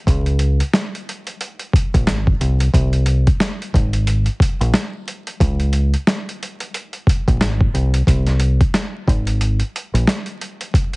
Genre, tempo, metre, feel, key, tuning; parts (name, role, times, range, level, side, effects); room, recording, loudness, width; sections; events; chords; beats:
hip hop, boom-bap hip-hop; 90 BPM; 4/4; swing 60% on 16ths; A4 = 438 Hz
deep dub fingered electric bass; bass; 0.1-10.0 s; Ab1 to Db2; -16 LUFS; equal
boom bap sampler-style drum kit; drums; 0.1-11.0 s; hi-hat, kick drum, snare drum; -18 LUFS; equal
little or no reverb; heavily compressed radio sound, multiband compression, vinyl crackle, nothing above 10.3 kHz; -15 LUFS; side -28 dB against mid
0.0-10.7 A section
break 9.4-10.7
| 0.07 0.74 1.40 2.07 | 2.74 3.40 4.07 4.74 | 5.40 6.07 6.74 7.40 | 8.07 8.74 9.40 10.07 | 10.74